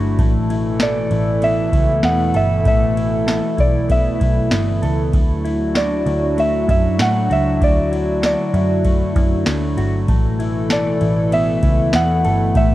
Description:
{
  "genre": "dream pop",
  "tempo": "97 BPM",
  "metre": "4/4",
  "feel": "straight",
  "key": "unclear",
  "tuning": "A4 = 440 Hz",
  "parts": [
    { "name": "hollow soft pad", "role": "sustained chords", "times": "0.0-12.7 s", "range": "B2 to B4", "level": "-22 LUFS", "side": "right 1 dB", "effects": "chorus" },
    { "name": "mellow electric guitar", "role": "arpeggios", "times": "0.0-12.7 s", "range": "D3 to A4", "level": "-25 LUFS", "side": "left 4 dB", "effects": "wide subtle chorus, ping-pong delay" },
    { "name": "vintage muted picked electric bass", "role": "bass", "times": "0.0-12.7 s", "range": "G1 to A2", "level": "-20 LUFS", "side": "equal", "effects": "none" },
    { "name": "booming analog drum machine", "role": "drums", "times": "0.2-12.7 s", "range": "kick drum, ride cymbal, snare drum, tambourine", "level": "-18 LUFS", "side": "equal", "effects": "none" },
    { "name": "soft synth bell", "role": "melody", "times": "0.8-12.7 s", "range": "D5 to F#5", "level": "-20 LUFS", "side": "equal", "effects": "chorus, ping-pong delay" }
  ],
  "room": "light reverb, digital ambience",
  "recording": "worn, warbling old tape, cassette tape, warbly pitch drift",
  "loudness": "-15 LUFS",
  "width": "side -15 dB against mid",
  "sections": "0.0-12.7 A section",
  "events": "none",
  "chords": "0.2 Asus2; 5.1 Dadd9; 10.1 Asus2",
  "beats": "| 0.19 0.80 1.42 2.04 | 2.66 3.28 3.90 4.52 | 5.13 5.75 6.37 6.99 | 7.61 8.23 8.85 9.46 | 10.08 10.70 11.32 11.94 | 12.56"
}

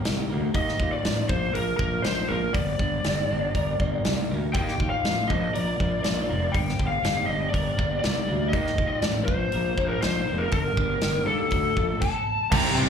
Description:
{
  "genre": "quiet-loud alternative rock",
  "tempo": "120 BPM",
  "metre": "4/4",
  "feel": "straight",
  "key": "G minor",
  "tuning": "A4 = 441 Hz",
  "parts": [
    { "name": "twelve-string electric guitar", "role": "arpeggios", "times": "0.0-12.0 s", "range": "G2 to Bb4", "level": "-34 LUFS", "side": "right 2 dB", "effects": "ensemble chorus, slapback echo" },
    { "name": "big rock drum kit", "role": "drums", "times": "0.0-12.9 s", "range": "crash cymbal, hi-hat, kick drum, snare drum", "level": "-28 LUFS", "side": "equal", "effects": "none" },
    { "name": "fuzz fingered electric bass", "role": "bass", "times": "0.1-12.9 s", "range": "F1 to Eb2", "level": "-28 LUFS", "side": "equal", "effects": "overdrive" },
    { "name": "lead guitar through a small cranked amp", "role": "melody", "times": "0.6-12.9 s", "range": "A4 to Bb5", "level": "-27 LUFS", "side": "left 1 dB", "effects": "overdrive, slapback echo" },
    { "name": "biting overdriven guitar", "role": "riff", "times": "12.5-12.9 s", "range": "C3 to G4", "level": "-26 LUFS", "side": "left 10 dB", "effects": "slapback echo" },
    { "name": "distorted electric guitar", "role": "riff", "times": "12.5-12.9 s", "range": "C3 to C4", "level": "-26 LUFS", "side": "right 12 dB", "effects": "distortion, slapback echo" }
  ],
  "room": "little or no reverb",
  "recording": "live gig heard through the venue's PA, club reverb",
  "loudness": "-22 LUFS",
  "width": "side -7 dB against mid",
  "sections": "0.0-12.5 A section",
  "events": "none",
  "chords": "0.0 Gm; 0.6 Ebsus2; 1.3 Bb5; 2.6 Gm; 4.5 Ebadd9; 5.3 Bb; 6.5 Gm; 8.5 Ebsus2; 9.3 Bb5; 10.5 Gm; 11.5 D5",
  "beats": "0.05 | 0.55 1.05 1.55 2.05 | 2.55 3.05 3.55 4.05 | 4.55 5.05 5.55 6.04 | 6.54 7.04 7.54 8.04 | 8.54 9.04 9.54 10.03 | 10.53 11.03 11.53 12.03 | 12.52"
}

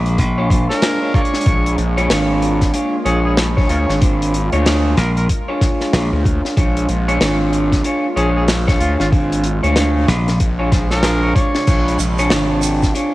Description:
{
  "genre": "glitch hop",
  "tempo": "94 BPM",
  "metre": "4/4",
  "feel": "swing 61% on 16ths",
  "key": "unclear",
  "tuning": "A4 = 440 Hz",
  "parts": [
    { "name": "warbly tape-like pad", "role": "sustained chords", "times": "0.0-13.1 s", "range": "C3 to F4", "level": "-26 LUFS", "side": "equal", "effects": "chorus, built-in reverb, sidechain pumping, cassette tape" },
    { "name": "slap bass", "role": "bass", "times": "0.0-0.7, 5.0-6.1, 10.1-10.4 s", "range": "Bb1", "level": "-16 LUFS", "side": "equal", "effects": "none" },
    { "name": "modern studio drum kit", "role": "drums", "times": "0.1-13.1 s", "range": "crash cymbal, hi-hat, snare drum", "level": "-22 LUFS", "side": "left 1 dB", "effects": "cassette tape" },
    { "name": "electronic kick drum", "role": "drums", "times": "0.2-12.9 s", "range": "none", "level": "-16 LUFS", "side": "equal", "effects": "overdrive, cassette tape" },
    { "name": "electric guitar at the edge of break-up", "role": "stabs", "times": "0.4-13.1 s", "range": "D4 to D5", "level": "-19 LUFS", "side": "equal", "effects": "vintage 12-bit sampler grit, sidechain pumping, cassette tape, analog delay" },
    { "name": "overdriven harmonica", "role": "melody", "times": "0.7-12.0 s", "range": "F4 to C#5", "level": "-24 LUFS", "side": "equal", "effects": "cassette tape, analog delay" },
    { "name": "gritty driven synth bass", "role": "bass", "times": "1.5-12.9 s", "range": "Ab1 to D2", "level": "-18 LUFS", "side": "equal", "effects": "distortion, tube saturation" },
    { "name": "tube shaker", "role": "percussion", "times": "11.7-13.1 s", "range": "none", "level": "-29 LUFS", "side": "right 7 dB", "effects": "none" }
  ],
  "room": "light reverb",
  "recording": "home recording on cassette",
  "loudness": "-14 LUFS",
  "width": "side -17 dB against mid",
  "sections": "0.0-13.1 A section",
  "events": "none",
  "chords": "0.0 Bb7#9",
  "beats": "0.19 0.82 | 1.46 2.10 2.74 3.38 | 4.02 4.66 5.29 5.93 | 6.57 7.21 7.85 8.48 | 9.12 9.76 10.40 11.04 | 11.68 12.31 12.95"
}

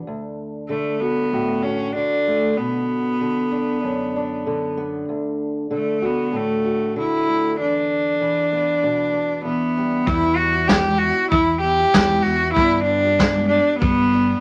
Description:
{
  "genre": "indie folk with a building arrangement",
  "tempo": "96 BPM",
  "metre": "4/4",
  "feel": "straight",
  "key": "unclear",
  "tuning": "A4 = 439 Hz",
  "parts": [
    { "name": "fingerpicked old ladder-braced acoustic guitar", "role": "accompaniment", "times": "0.0-12.6 s", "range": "D2 to F#4", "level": "-27 LUFS", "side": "equal", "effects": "none" },
    { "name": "clear cello", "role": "melody", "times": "0.7-14.4 s", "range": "A3 to G4", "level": "-22 LUFS", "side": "equal", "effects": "none" },
    { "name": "picked twelve-string acoustic guitar", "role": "accompaniment", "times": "10.1-14.4 s", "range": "G2 to G4", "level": "-31 LUFS", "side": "equal", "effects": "none" },
    { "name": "fingered electric bass", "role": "bass", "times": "10.1-14.3 s", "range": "E2 to G2", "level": "-28 LUFS", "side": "equal", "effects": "none" },
    { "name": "vintage brush drum kit", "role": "drums", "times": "10.1-14.0 s", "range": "kick drum, snare drum", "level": "-22 LUFS", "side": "equal", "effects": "none" }
  ],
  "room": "moderate studio reverb, RT60 0.8 s",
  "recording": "none",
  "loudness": "-20 LUFS",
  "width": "mono",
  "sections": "0.0-10.1 A section; 10.1-14.4 B section",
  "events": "none",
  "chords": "0.1 D; 2.6 Bm; 5.1 D; 7.6 Em7; 10.1 Em; 12.6 G",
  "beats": "| 0.06 0.69 1.32 1.94 | 2.57 3.20 3.82 4.45 | 5.08 5.70 6.33 6.95 | 7.58 8.21 8.83 9.45 | 10.08 10.70 11.33 11.95 | 12.57 13.20 13.82"
}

